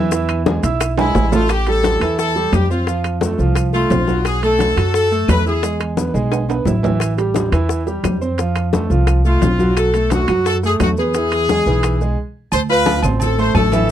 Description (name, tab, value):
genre	latin, salsa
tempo	174 BPM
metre	4/4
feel	straight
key	A minor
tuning	A4 = 439 Hz
part	bright concert grand piano	accompaniment	0.0-13.9 s	E3 to F6	-21 LUFS	right 4 dB	none
part	upright bass	bass	0.0-13.9 s	A1 to F#2	-18 LUFS	equal	none
part	bongos	percussion	0.1-12.2 s	none	-24 LUFS	left 10 dB	none
part	congas	percussion	0.1-13.9 s	none	-23 LUFS	left 3 dB	none
part	maracas	percussion	0.1-13.9 s	none	-34 LUFS	left 22 dB	none
part	timbales and agogo bells	percussion	0.1-13.9 s	none	-25 LUFS	right 9 dB	none
part	claves	percussion	0.3-13.7 s	none	-31 LUFS	left 24 dB	none
part	brilliant horn section	melody	1.0-5.8, 9.3-13.9 s	E4 to C5	-18 LUFS	left 2 dB	none
room	little or no reverb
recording	dry, close 1970s-style studio recording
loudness	-14 LUFS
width	side -11 dB against mid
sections	0.0-1.5 A section; 1.5-12.5 B section; 12.5-13.9 A section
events	drum fill 1.0-1.5, 6.3-7.0; stop 12.2-12.5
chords	0.1 E; 1.5 Am7; 2.9 F; 4.3 B5; 5.6 E; 7.0 Am7; 8.4 F; 9.8 B5; 11.1 E; 12.5 Dm7